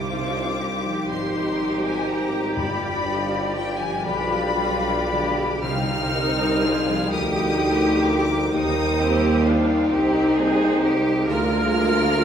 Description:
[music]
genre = classical, slow romantic movement for symphony orchestra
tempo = 37-44 BPM (dotted quarters)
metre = 6/8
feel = rubato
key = C minor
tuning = A4 = 440 Hz
[part]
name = rich chamber violin section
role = melody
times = 0.0-12.2 s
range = G5 to F6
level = -27 LUFS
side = left 4 dB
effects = none
[part]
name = dark chamber violin section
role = second line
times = 0.0-12.2 s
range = Eb4 to D5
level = -29 LUFS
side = equal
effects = none
[part]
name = rich chamber viola section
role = accompaniment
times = 0.0-12.2 s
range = F3 to G4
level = -28 LUFS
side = right 1 dB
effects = none
[part]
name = warm French horn section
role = sustained chords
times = 0.0-12.2 s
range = Bb3 to F4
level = -26 LUFS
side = left 1 dB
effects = none
[part]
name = concert harp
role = arpeggios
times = 0.0-12.2 s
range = G2 to C5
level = -31 LUFS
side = left 4 dB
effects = none
[part]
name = clear studio cello section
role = bass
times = 0.0-12.2 s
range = Eb4 to Bb4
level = -30 LUFS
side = right 2 dB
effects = none
[part]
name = rich studio double bass section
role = bass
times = 0.0-12.2 s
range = G1 to Eb2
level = -28 LUFS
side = right 2 dB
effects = none
[part]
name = warm tuba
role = bass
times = 0.0-12.2 s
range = G1 to Eb2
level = -28 LUFS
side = right 2 dB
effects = none
[part]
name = timpani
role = percussion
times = 0.0-7.1 s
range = G2 to C3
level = -35 LUFS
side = equal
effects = none
[sound]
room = wet recital hall reverb, RT60 1.4 s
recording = recorded in a church or concert hall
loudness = -19 LUFS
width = side -8 dB against mid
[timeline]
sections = 0.0-12.2 A section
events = none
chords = 0.0 Cm; 2.6 G7; 5.6 Cm; 11.3 Bb/D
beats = 1.10 | 2.57 4.04 | 5.63 7.11 | 8.53 9.91 | 11.29

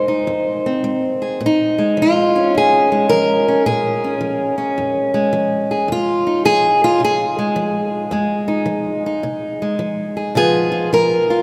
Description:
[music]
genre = acoustic country blues, solo or duo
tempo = 107 BPM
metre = 4/4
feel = swing 65% on 8ths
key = F minor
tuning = A4 = 439 Hz
[part]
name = fingerpicked old ladder-braced acoustic guitar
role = solo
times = 0.0-11.4 s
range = F2 to C5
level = -17 LUFS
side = equal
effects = none
[sound]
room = wet cathedral reverb, RT60 7.0 s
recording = recorded in a church or concert hall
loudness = -17 LUFS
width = mono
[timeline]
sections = 0.0-11.4 A section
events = none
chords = 0.0 Fm7; 1.4 Bbm7; 5.9 Fm7; 10.4 Db7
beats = 0.29 0.85 | 1.41 1.97 2.53 3.09 | 3.65 4.21 4.77 5.33 | 5.89 6.45 7.01 7.57 | 8.13 8.69 9.25 9.81 | 10.37 10.93

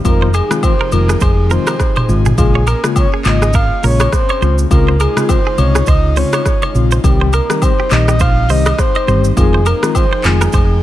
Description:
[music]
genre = afrobeats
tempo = 103 BPM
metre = 4/4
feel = swing 58% on 16ths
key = unclear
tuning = A4 = 440 Hz
[part]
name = tine electric piano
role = accompaniment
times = 0.0-10.5 s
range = Db3 to G4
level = -19 LUFS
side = left 5 dB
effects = medium stereo tremolo
[part]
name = airy breathy pad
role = sustained chords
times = 0.0-10.8 s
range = C3 to G5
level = -25 LUFS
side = equal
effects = chorus
[part]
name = hollow-body short-scale fingered electric bass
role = bass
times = 0.0-10.8 s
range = F1 to Db2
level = -13 LUFS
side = equal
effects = none
[part]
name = afro-pop drum kit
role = drums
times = 0.0-10.7 s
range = handclaps, hi-hat, kick drum, rim click, shaker, toms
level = -15 LUFS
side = equal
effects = none
[part]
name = breathy flute-like synth lead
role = melody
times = 0.1-10.8 s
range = G4 to F5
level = -19 LUFS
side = equal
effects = chorus
[part]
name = agogo bells and woodblock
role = percussion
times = 0.1-10.7 s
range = none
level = -25 LUFS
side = left 6 dB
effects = none
[part]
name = direct-recorded clean electric guitar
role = riff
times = 0.2-10.6 s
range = G4 to Eb5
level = -23 LUFS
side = right 7 dB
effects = none
[sound]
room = digital ambience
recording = none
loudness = -10 LUFS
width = side -13 dB against mid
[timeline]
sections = 0.0-10.8 A section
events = none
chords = 0.0 Fm7; 2.4 Bbm7; 4.4 Dbmaj7; 7.0 Cm; 9.4 Fm7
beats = | 0.05 0.63 1.21 1.80 | 2.38 2.96 3.54 4.13 | 4.71 5.29 5.87 6.46 | 7.04 7.62 8.20 8.79 | 9.37 9.95 10.53

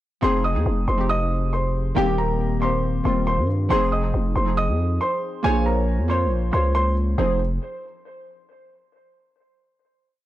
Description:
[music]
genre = hip hop, drill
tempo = 138 BPM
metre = 4/4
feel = half-time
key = F minor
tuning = A4 = 440 Hz
[part]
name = dark concert grand piano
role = melody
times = 0.2-7.4 s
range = G4 to Eb6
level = -25 LUFS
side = right 1 dB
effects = analog delay
[part]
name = glassy digital keys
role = accompaniment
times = 0.2-7.4 s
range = Eb3 to Db5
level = -26 LUFS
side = left 1 dB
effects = chorus
[part]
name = growling 808-style bass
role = bass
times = 0.2-7.6 s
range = Eb1 to G2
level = -22 LUFS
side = equal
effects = none
[sound]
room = small room ambience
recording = dry, gritty hardware recording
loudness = -19 LUFS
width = side -14 dB against mid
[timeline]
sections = 0.2-7.2 hook; 7.2-8.9 final chord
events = none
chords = 0.2 Fm7; 2.0 Eb6; 3.7 Fm7; 5.4 Bbmadd9; 7.2 Fm7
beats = | 0.23 0.66 1.09 1.53 | 1.96 2.40 2.83 3.27 | 3.70 4.14 4.57 5.01 | 5.44 5.88 6.31 6.75 | 7.18

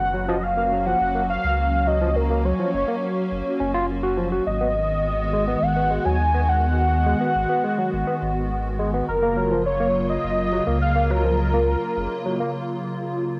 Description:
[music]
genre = IDM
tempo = 104 BPM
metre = 4/4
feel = straight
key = unclear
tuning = A4 = 440 Hz
[part]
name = warm velvety synth lead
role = melody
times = 0.0-12.5 s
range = A#4 to G#5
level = -26 LUFS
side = equal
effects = chorus, cassette tape, tape echo
[part]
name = hollow soft pad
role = sustained chords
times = 0.0-13.4 s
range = C#3 to F#4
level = -29 LUFS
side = equal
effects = ensemble chorus, vintage 12-bit sampler grit, cassette tape
[part]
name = warm sub bass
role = bass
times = 0.0-12.1 s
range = F#1 to D#2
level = -28 LUFS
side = equal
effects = tube saturation
[part]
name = barky tine electric piano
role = arpeggios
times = 0.1-12.5 s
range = E#3 to F#4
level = -30 LUFS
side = equal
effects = overdrive, cassette tape, analog delay
[sound]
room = moderate lush hall reverb, RT60 2.5 s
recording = home recording on cassette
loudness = -22 LUFS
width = mono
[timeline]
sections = 0.0-13.4 A section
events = break 12.5-13.4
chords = 0.0 F#maj7; 4.5 G#m7; 9.1 F#maj7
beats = 0.43 1.00 1.58 | 2.16 2.74 3.31 3.89 | 4.47 5.04 5.62 6.20 | 6.77 7.35 7.93 8.51 | 9.08 9.66 10.24 10.81 | 11.39 11.97 12.54 13.12

